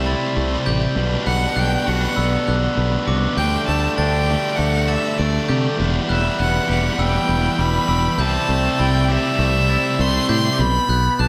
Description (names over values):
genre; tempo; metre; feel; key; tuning
post-rock; 100 BPM; 4/4; straight; G major; A4 = 440 Hz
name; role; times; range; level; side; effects
clear violin; melody; 0.0-11.3 s; D5 to C6; -26 LUFS; equal; slapback echo
twangy electric guitar; arpeggios; 0.0-11.3 s; E2 to G4; -30 LUFS; equal; spring reverb, slapback echo
thick fuzz guitar; riff; 0.0-10.6 s; B2 to E4; -24 LUFS; equal; distortion, slapback echo
fingered electric bass; bass; 0.0-11.3 s; E1 to C3; -23 LUFS; equal; none
glockenspiel with hard plastic mallets; arpeggios; 0.1-11.3 s; D6 to A6; -32 LUFS; equal; slapback echo
room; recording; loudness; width
wet concert hall reverb, RT60 1.7 s, small room reverb; big arena sound; -19 LUFS; mono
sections
0.0-11.3 A section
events
none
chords
0.0 C6; 1.0 Gmaj7/B; 3.4 Dsus4; 5.8 Em; 8.2 C6; 10.6 Gmaj7/B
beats
0.36 | 0.97 1.57 2.17 2.77 | 3.38 3.98 4.58 5.18 | 5.79 6.39 6.99 7.59 | 8.19 8.79 9.39 10.00 | 10.60 11.20